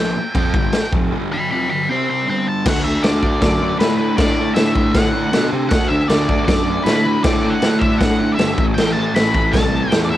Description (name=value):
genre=garage rock duo or trio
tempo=157 BPM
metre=4/4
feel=straight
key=unclear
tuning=A4 = 440 Hz
part: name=octave-fuzz lead guitar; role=melody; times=0.0-10.2 s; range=B4 to D6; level=-22 LUFS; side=left 1 dB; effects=distortion, cassette tape
part: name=fuzz guitar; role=riff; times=0.0-10.2 s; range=F2 to F4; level=-21 LUFS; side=equal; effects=distortion, cassette tape
part: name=fuzz picked electric bass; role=bass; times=0.0-10.2 s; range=F1 to C3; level=-21 LUFS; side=equal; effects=overdrive
part: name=raw garage drum kit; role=drums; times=0.3-10.0 s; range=crash cymbal, kick drum, snare drum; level=-18 LUFS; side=equal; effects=cassette tape
room=light reverb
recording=home recording on cassette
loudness=-14 LUFS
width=side -13 dB against mid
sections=0.0-2.7 A section; 2.7-10.2 B section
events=lead electric guitar solo 0.0-2.7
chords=0.0 G; 1.9 C5; 2.3 G5; 2.7 D; 8.6 Am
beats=0.35 0.74 | 1.12 1.51 1.89 2.28 | 2.66 3.04 3.43 3.81 | 4.20 4.58 4.96 5.34 | 5.72 6.11 6.49 6.87 | 7.25 7.63 8.01 8.39 | 8.77 9.15 9.54 9.92